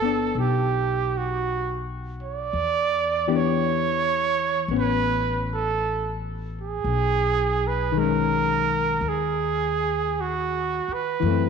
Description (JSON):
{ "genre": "jazz ballad", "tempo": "55 BPM", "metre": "4/4", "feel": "swing 69% on 8ths", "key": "unclear", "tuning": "A4 = 440 Hz", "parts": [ { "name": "breathy trumpet", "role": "melody", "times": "0.0-11.5 s", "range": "F#4 to D5", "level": "-24 LUFS", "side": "right 6 dB", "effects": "none" }, { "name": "hollow-body jazz guitar", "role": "accompaniment", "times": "0.0-11.5 s", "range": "D#3 to G4", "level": "-26 LUFS", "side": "left 11 dB", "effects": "none" }, { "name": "upright bass", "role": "bass", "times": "0.0-11.5 s", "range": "G1 to F#2", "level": "-29 LUFS", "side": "left 2 dB", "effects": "none" } ], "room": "wet echo chamber reverb, RT60 2.2 s", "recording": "1960s-style stereo with parts hard left and right", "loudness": "-22 LUFS", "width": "side -6 dB against mid", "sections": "0.0-11.5 A section", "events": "none", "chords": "0.0 G; 2.5 Em7; 4.7 Aadd9; 6.8 B69" }